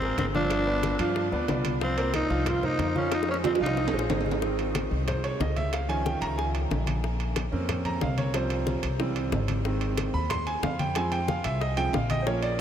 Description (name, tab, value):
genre	latin, salsa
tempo	184 BPM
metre	4/4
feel	straight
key	F minor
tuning	A4 = 440 Hz
part	raspy tenor saxophone	melody	0.0-4.1 s	C4 to F4	-30 LUFS	left 1 dB	tape echo
part	bright concert grand piano	accompaniment	0.0-12.6 s	Eb3 to C6	-29 LUFS	right 2 dB	none
part	upright bass	bass	0.0-12.6 s	G1 to G2	-30 LUFS	left 1 dB	none
part	bongos	percussion	0.0-12.4 s	none	-36 LUFS	left 7 dB	none
part	congas	percussion	0.0-12.6 s	none	-36 LUFS	left 2 dB	none
part	timbales	percussion	0.2-12.6 s	none	-35 LUFS	right 7 dB	none
room	wet huge ambient reverb, RT60 7.2 s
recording	dreamy mix soaked in reverb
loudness	-25 LUFS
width	side -9 dB against mid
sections	0.0-4.4 A section; 4.4-12.6 B section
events	drum fill 3.1-4.4; grand piano solo 4.4-12.6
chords	0.0 Db6 (rootless); 0.5 G7; 1.8 C7sus4; 3.1 Fm7; 4.4 Ab; 5.7 Dbadd9; 7.0 Bbmadd9; 8.3 Csus4; 9.0 C; 9.7 Ab; 11.0 Fm